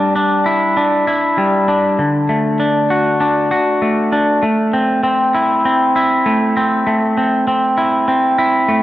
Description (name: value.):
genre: rock.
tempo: 98 BPM.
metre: 4/4.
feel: straight.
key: A dorian.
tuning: A4 = 440 Hz.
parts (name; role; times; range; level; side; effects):
twangy electric guitar; solo; 0.0-8.8 s; D3 to F#4; -12 LUFS; equal; spring reverb, analog delay.
room: moderate plate reverb, RT60 3.4 s.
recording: none.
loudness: -12 LUFS.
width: side -14 dB against mid.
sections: 0.0-8.8 A section.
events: none.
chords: 0.0 G5; 2.0 D; 4.4 Am.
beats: 0.16 0.77 1.38 | 1.99 2.60 3.21 3.82 | 4.43 5.04 5.65 6.26 | 6.87 7.47 8.08 8.69.